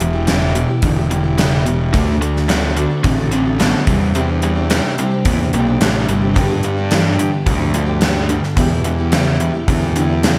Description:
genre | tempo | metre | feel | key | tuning
classic rock | 109 BPM | 4/4 | straight | unclear | A4 = 440 Hz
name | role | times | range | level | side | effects
picked steel-string acoustic guitar | accompaniment | 0.0-10.4 s | G2 to A4 | -26 LUFS | equal | slapback echo
cranked stack guitar | riff | 0.0-10.4 s | E2 to C4 | -24 LUFS | equal | none
distorted electric guitar | riff | 0.0-10.4 s | E2 to C4 | -23 LUFS | equal | overdrive
fuzz picked electric bass | bass | 0.0-10.4 s | E1 to G2 | -21 LUFS | equal | overdrive
gated 80s drum kit | drums | 0.0-10.4 s | hi-hat, kick drum, snare drum | -20 LUFS | equal | none
room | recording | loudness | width
moderate lush hall reverb, RT60 1.9 s, studio reverb | none | -16 LUFS | mono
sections
0.0-10.4 A section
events
none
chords
0.0 Em; 1.9 D; 3.9 Cadd9/E; 6.4 G; 8.6 Em

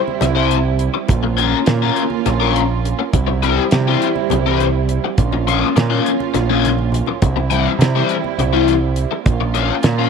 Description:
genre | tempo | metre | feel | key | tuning
psychedelic rock | 206 BPM (eighths) | 7/8 | straight | unclear | A4 = 440 Hz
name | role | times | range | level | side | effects
dark studio string section | sustained chords | 0.0-10.1 s | G3 to F4 | -22 LUFS | right 14 dB | none
congas | percussion | 0.1-9.6 s | none | -27 LUFS | left 12 dB | none
overdriven electric guitar | riff | 0.2-10.1 s | E3 to C5 | -18 LUFS | left 14 dB | flanger
growling picked electric bass | bass | 0.2-10.1 s | Bb1 to C3 | -18 LUFS | right 2 dB | overdrive
damped 70s drum kit | drums | 0.2-10.0 s | hi-hat, kick drum, snare drum | -18 LUFS | right 2 dB | none
room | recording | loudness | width
light reverb, studio reverb | 1960s-style stereo with parts hard left and right | -14 LUFS | side -6 dB against mid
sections
0.0-10.1 A section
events
drum fill 6.5-7.2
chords
0.0 C; 1.1 Bbm; 3.1 C; 5.2 Bbm; 7.2 C; 9.3 Bbm

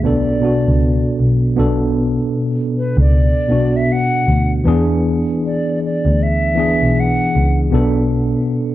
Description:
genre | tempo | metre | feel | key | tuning
lo-fi hip hop | 78 BPM | 4/4 | swing 61% on 16ths | B dorian | A4 = 440 Hz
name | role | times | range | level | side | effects
hollow concert flute | melody | 0.0-7.6 s | B4 to F#5 | -21 LUFS | equal | low-pass filter
tine electric piano | accompaniment | 0.0-8.7 s | B2 to A4 | -16 LUFS | equal | overdrive, medium stereo tremolo, low-pass filter
dark double bass | bass | 0.0-8.3 s | B1 to E2 | -16 LUFS | equal | none
room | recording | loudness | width
moderate small room reverb, RT60 0.6 s | dark, warm production | -13 LUFS | side -14 dB against mid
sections
0.0-1.6 A section; 1.6-8.7 B section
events
none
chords
0.0 Bm7; 4.7 E7; 7.7 Bm7

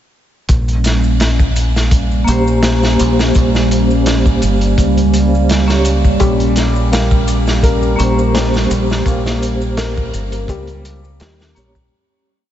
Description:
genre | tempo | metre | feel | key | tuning
trip hop | 84 BPM | 4/4 | swing 54% on 16ths | Bb dorian | A4 = 440 Hz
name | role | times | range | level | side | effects
warbly tape-like pad | sustained chords | 0.5-11.9 s | G3 to Db4 | -18 LUFS | right 2 dB | chorus, built-in reverb
deep dub fingered electric bass | bass | 0.5-11.9 s | G1 to Eb2 | -16 LUFS | equal | tube saturation
crunchy breakbeat drum kit | drums | 0.5-11.9 s | hi-hat, kick drum, snare drum | -17 LUFS | equal | none
maracas | percussion | 0.5-11.9 s | none | -34 LUFS | left 3 dB | none
vibraphone with medium mallets | accompaniment | 2.2-11.8 s | Bb3 to Db5 | -19 LUFS | left 1 dB | tremolo, tape echo
felt-muted upright piano | arpeggios | 6.2-11.9 s | G3 to Bb4 | -21 LUFS | left 2 dB | tape echo
room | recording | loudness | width
light reverb, small room ambience | nothing above 7.9 kHz | -11 LUFS | side -11 dB against mid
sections
0.5-11.9 groove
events
fade-out 8.1-11.9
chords
0.5 Bbm69

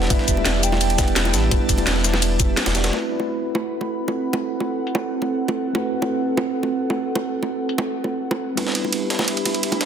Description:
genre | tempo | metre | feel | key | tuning
liquid drum and bass | 170 BPM | 4/4 | straight | A dorian | A4 = 442 Hz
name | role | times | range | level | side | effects
hollow clarinet-like synth lead | melody | 0.0-1.3 s | E5 to G5 | -29 LUFS | right 4 dB | wide subtle chorus, cassette tape, dub echo
mellow tine electric piano | accompaniment | 0.0-9.9 s | G3 to D5 | -26 LUFS | right 1 dB | medium stereo tremolo, ping-pong delay
airy breathy pad | sustained chords | 0.0-9.9 s | C4 to B5 | -26 LUFS | right 2 dB | chorus
warm sub bass | bass | 0.0-2.9 s | E1 to A1 | -22 LUFS | equal | none
breakbeat sampler-style drum kit | drums | 0.0-2.9, 8.6-9.9 s | ride cymbal, snare drum | -25 LUFS | right 1 dB | high-pass filter on cymbals, high-pass filter on snare
drum and bass drum kit | drums | 0.1-4.9, 7.7-7.8 s | cabasa, hi-hat, snare drum | -24 LUFS | left 1 dB | low-pass filter on hats, low-pass filter on perc, low-pass filter on snare, low-pass filter on room
electronic kick drum | drums | 0.1-2.5 s | none | -21 LUFS | equal | none
bongos | percussion | 0.1-9.8 s | none | -28 LUFS | right 2 dB | none
room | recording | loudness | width
moderate plate reverb, RT60 2.2 s | dense, heavily limited modern master | -19 LUFS | side -8 dB against mid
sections
0.0-2.9 A section; 2.9-9.9 B section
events
drop 0.0-2.9; band accent 2.6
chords
0.0 Em7; 2.9 Am69; 8.6 Em7

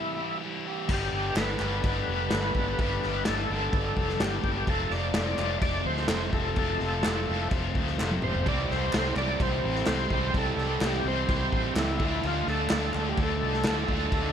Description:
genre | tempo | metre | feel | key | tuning
classic rock | 127 BPM | 4/4 | straight | unclear | A4 = 438 Hz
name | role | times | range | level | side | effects
overdriven tonewheel organ | melody | 0.0-14.3 s | E4 to D5 | -31 LUFS | equal | chorus vibrato, slow rotary speaker
crunchy overdriven guitar | riff | 0.0-0.9, 8.4-14.3 s | C3 to G4 | -34 LUFS | right 13 dB | none
tight distorted guitar | riff | 0.0-14.3 s | F2 to G4 | -35 LUFS | left 15 dB | distortion
string machine, full ensemble | sustained chords | 0.9-14.3 s | G3 to D5 | -41 LUFS | equal | none
overdriven electric guitar | riff | 0.9-14.3 s | F2 to D4 | -35 LUFS | equal | harmonic tremolo
fingered electric bass | bass | 0.9-14.3 s | F1 to D2 | -32 LUFS | equal | none
raw garage drum kit | drums | 0.9-14.2 s | crash cymbal, kick drum, snare drum, toms | -30 LUFS | equal | none
group handclap | percussion | 1.4-13.8 s | none | -39 LUFS | right 2 dB | none
room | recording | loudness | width
little or no reverb | none | -25 LUFS | side -8 dB against mid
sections
0.9-14.3 A section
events
break 0.0-0.9; drum fill 8.0-8.5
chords
0.0 C; 0.9 G; 4.7 F; 8.5 C; 12.0 Dm

